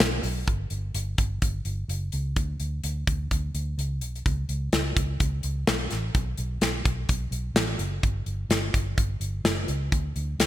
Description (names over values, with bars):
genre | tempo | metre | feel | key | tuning
piano-driven pop | 127 BPM | 4/4 | swing 56% on 16ths | B minor | A4 = 440 Hz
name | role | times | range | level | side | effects
vintage muted fingered electric bass | bass | 0.0-10.5 s | F#1 to D2 | -29 LUFS | equal | none
modern studio drum kit | drums | 0.0-10.5 s | hi-hat, kick drum, snare drum | -25 LUFS | equal | gated reverb
room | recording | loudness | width
little or no reverb | bright 1980s-style digital production | -25 LUFS | side -14 dB against mid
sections
0.5-10.5 A section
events
none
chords
none